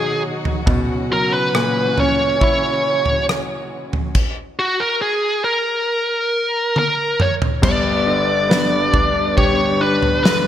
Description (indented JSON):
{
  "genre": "pop ballad",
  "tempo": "69 BPM",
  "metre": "4/4",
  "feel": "straight",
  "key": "unclear",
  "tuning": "A4 = 441 Hz",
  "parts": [
    { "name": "bluesy overdriven lead guitar", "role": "melody", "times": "0.0-10.5 s", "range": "F#4 to D5", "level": "-18 LUFS", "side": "equal", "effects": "distortion" },
    { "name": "bright concert grand piano", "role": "accompaniment", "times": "0.0-10.5 s", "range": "G1 to G4", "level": "-22 LUFS", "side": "left 1 dB", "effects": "none" },
    { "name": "warm studio string section", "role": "sustained chords", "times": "0.0-10.5 s", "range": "B2 to B4", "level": "-26 LUFS", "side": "left 1 dB", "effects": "none" },
    { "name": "natural country drum kit", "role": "drums", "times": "0.5-10.4 s", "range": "crash cymbal, kick drum, rim click, snare drum, toms", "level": "-20 LUFS", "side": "equal", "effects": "gated reverb" },
    { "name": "mellow French horn section", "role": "second line", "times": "7.6-10.5 s", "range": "B3 to D4", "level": "-25 LUFS", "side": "left 5 dB", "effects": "none" }
  ],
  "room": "moderate plate reverb, RT60 2.5 s",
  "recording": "bright 1980s-style digital production",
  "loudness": "-15 LUFS",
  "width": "side -10 dB against mid",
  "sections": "0.0-7.6 A section; 7.6-10.5 B section",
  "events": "drum fill 6.8-7.6",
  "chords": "0.0 B; 0.7 F#7; 7.6 G"
}